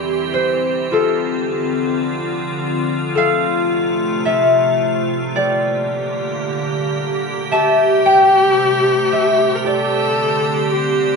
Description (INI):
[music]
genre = celtic folk, Celtic slow air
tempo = 55 BPM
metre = 4/4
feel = rubato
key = unclear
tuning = A4 = 436 Hz
[part]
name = concert harp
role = accompaniment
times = 0.0-11.2 s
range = E4 to A5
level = -17 LUFS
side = left 2 dB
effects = none
[part]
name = icy glass pad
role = sustained chords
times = 0.0-11.2 s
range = C3 to G4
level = -19 LUFS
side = right 1 dB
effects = chorus, built-in reverb
[part]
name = warm viola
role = second line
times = 7.5-11.2 s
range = G4 to Bb4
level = -17 LUFS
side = left 3 dB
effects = none
[sound]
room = moderate studio reverb, RT60 0.7 s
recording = band playing live in one room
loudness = -14 LUFS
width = side -4 dB against mid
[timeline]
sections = 0.0-11.2 A section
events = harp solo 0.0-11.2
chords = 0.0 C; 0.9 Dm7; 3.1 F/C; 5.3 Bb6; 7.5 Am7/C; 9.6 Csus2